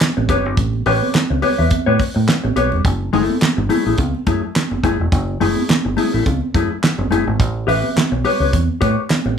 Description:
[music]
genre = funk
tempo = 106 BPM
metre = 4/4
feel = swing 56% on 16ths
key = unclear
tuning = A4 = 440 Hz
[part]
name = mellow electric guitar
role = accompaniment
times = 0.0-9.3 s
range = A3 to E5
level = -19 LUFS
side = left 5 dB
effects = none
[part]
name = damped 70s drum kit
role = drums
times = 0.0-9.2 s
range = handclaps, hi-hat, kick drum, snare drum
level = -19 LUFS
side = right 1 dB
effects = none
[part]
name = congas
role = percussion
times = 0.0-9.4 s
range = none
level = -24 LUFS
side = right 5 dB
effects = none
[part]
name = fingered electric bass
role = bass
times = 0.2-9.4 s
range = E1 to A2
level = -19 LUFS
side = right 1 dB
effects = none
[sound]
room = light reverb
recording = studio ambience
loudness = -15 LUFS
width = side -7 dB against mid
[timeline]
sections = 0.0-9.4 A section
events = none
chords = 0.0 A9; 2.8 F#m9; 7.4 A9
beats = 0.01 | 0.58 1.15 1.71 2.28 | 2.85 3.42 3.98 4.55 | 5.12 5.69 6.26 6.83 | 7.39 7.96 8.53 9.10

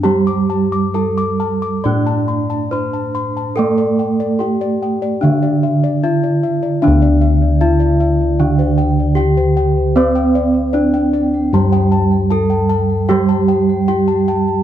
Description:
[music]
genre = gamelan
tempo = 65-77 BPM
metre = 4/4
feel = straight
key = D slendro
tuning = A4 = 440 Hz
[part]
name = gamelan-type bronze metallophone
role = melody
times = 0.0-14.6 s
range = C4-40c to D5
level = -18 LUFS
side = left 1 dB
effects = none
[part]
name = gamelan-type bronze metallophone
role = accompaniment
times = 0.0-14.6 s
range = D3 to D4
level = -17 LUFS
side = right 6 dB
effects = none
[part]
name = gamelan-type bossed gongs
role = arpeggios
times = 0.0-14.5 s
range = C5-40c to D6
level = -24 LUFS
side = left 6 dB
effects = none
[part]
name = gamelan-type bossed gongs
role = bass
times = 0.0-14.6 s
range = D2 to C5-40c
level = -18 LUFS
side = left 2 dB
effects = none
[part]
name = gamelan-type bronze metallophone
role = arpeggios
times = 6.8-14.6 s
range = C5-40c to A5+20c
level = -27 LUFS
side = right 4 dB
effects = none
[sound]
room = light reverb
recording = close, detailed microphones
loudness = -13 LUFS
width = side -11 dB against mid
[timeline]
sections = 0.0-6.8 A section; 6.8-14.6 B section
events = none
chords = none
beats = | 0.04 0.96 1.85 2.72 | 3.58 4.42 5.24 6.04 | 6.83 7.62 8.40 9.18 | 9.96 10.75 11.53 12.31 | 13.09 13.88

